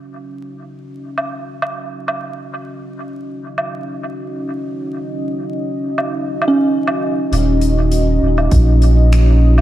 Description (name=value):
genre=ambient dub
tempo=100 BPM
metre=4/4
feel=straight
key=Eb minor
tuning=A4 = 440 Hz
part: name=deep dark ambient pad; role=sustained chords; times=0.0-9.6 s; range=Db4 to Eb5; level=-22 LUFS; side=right 1 dB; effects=chorus, built-in reverb
part: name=soft-mallet drum kit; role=drums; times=1.2-9.6 s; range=finger snaps, hi-hat, woodblock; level=-24 LUFS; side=right 2 dB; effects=dub echo
part: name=soft synth bell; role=arpeggios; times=6.5-9.6 s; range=Db4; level=-20 LUFS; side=right 1 dB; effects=chorus, phaser, tape echo
part: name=warm sub bass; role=bass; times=7.3-9.6 s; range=Eb1 to Bb1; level=-11 LUFS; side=equal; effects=tube saturation
part: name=electronic kick drum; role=drums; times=8.5-8.6 s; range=none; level=-16 LUFS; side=equal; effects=none
room=light reverb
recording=echo-heavy mix, vinyl crackle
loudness=-15 LUFS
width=side -14 dB against mid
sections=0.0-7.3 A section; 7.3-9.6 B section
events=filter sweep on ambient pad 0.0-7.3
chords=0.0 Ebm7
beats=| 0.12 0.72 1.32 1.92 | 2.52 3.12 3.72 4.32 | 4.92 5.52 6.12 6.72 | 7.32 7.92 8.52 9.12